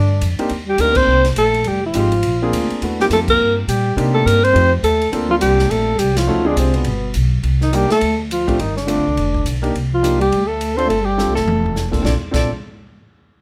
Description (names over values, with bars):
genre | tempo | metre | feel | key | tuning
jazz, small-group swing and bop | 208 BPM | 4/4 | swing 61% on 8ths | Bb major | A4 = 440 Hz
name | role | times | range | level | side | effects
mellow alto saxophone | melody | 0.0-12.5 s | Cb4 to D5 | -20 LUFS | equal | none
breathy trombone | second line | 0.0-12.5 s | Cb3 to D4 | -26 LUFS | equal | none
upright bass | bass | 0.0-12.5 s | F1 to C3 | -22 LUFS | equal | none
swinging big-band drum kit | drums | 0.2-12.4 s | crash cymbal, hi-hat, kick drum, ride cymbal, snare drum, toms | -28 LUFS | equal | none
warm upright piano | accompaniment | 0.4-12.5 s | Bb2 to A4 | -24 LUFS | equal | none
room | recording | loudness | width
light reverb | none | -17 LUFS | mono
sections
0.0-7.4 A section; 7.4-12.0 B section; 12.0-13.2 C section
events
band accent 0.9, 3.2, 6.1; drum fill 11.2-11.8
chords
0.0 G5; 0.5 Cm7; 1.7 Fm7; 2.2 Bb7; 2.8 Eb6; 4.0 Cm7; 4.5 F7; 5.1 Bbmaj7; 6.3 Dm7b5; 6.9 G; 7.4 Cm9; 8.0 Dm7; 8.6 G7sus4; 9.2 Fsus2; 9.7 Cm9; 10.3 Dm7; 10.9 G7sus4; 11.5 F6; 12.0 Bbmaj7